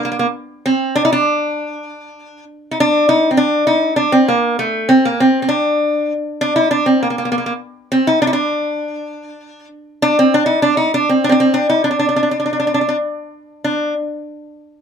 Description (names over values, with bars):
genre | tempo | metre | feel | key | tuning
arabic | 66 BPM (dotted quarters) | 6/8 | straight | D maqam hijaz | A4 = 444 Hz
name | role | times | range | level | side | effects
lap resonator guitar | solo | 0.0-13.9 s | A3 to Eb4+25c | -14 LUFS | equal | none
room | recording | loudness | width
little or no reverb | close, detailed microphones | -13 LUFS | side -7 dB against mid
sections
0.0-13.7 A section; 13.7-14.8 B section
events
none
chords
none